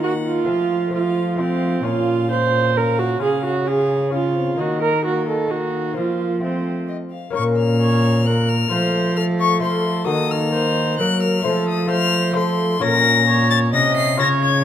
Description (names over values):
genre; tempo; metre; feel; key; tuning
classical, renaissance-style consort dance; 132 BPM; 3/4; straight; Bb harmonic minor; A4 = 439 Hz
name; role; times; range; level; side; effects
rich violin; melody; 0.0-14.6 s; C5 to C7; -23 LUFS; left 7 dB; none
warm viola; second line; 0.0-14.6 s; C4 to Eb5; -22 LUFS; right 4 dB; none
lute; accompaniment; 0.0-14.6 s; Bb2 to Eb5; -27 LUFS; left 6 dB; none
mellow trombone; accompaniment; 0.0-14.6 s; A3 to Db4; -27 LUFS; left 3 dB; none
dark cello; bass; 0.0-14.6 s; Bb2 to Gb3; -21 LUFS; equal; none
room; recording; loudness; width
moderate recital hall reverb, RT60 1.8 s; close, detailed microphones; -16 LUFS; side -10 dB against mid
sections
0.0-7.3 A section; 7.3-14.6 A section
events
none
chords
0.5 F; 1.8 Bbm; 3.2 Db; 4.6 Ebm; 6.0 Fsus4; 6.4 F; 7.3 Bbm; 8.7 F; 10.1 Ebm; 11.5 F; 12.8 Bbm